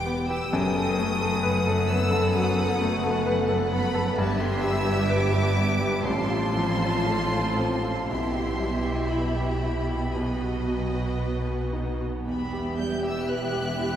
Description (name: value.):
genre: classical, romantic movement for piano and orchestra.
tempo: 55-67 BPM.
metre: 4/4.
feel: rubato.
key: E minor.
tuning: A4 = 440 Hz.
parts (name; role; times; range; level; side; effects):
rich chamber violin section; melody; 0.0-14.0 s; A5 to G6; -32 LUFS; left 1 dB; none.
warm grand piano; melody; 0.0-14.0 s; A1 to B4; -27 LUFS; left 1 dB; none.
rich chamber violin section; second line; 0.0-14.0 s; G4 to A5; -33 LUFS; left 1 dB; none.
rich chamber viola section; accompaniment; 0.0-14.0 s; B3 to A4; -32 LUFS; right 1 dB; none.
rich chamber double bass section; bass; 0.0-14.0 s; E1 to B1; -31 LUFS; right 2 dB; none.
warm chamber cello section; bass; 0.0-14.0 s; E2 to B2; -31 LUFS; right 1 dB; none.
room: wet church reverb, RT60 2.9 s.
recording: none.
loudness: -23 LUFS.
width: side -10 dB against mid.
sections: 0.0-14.0 A section.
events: none.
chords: 0.0 Em; 0.5 B7/F#; 4.2 Em/G; 6.0 F/A; 8.1 Em/B; 10.2 B; 12.3 Em.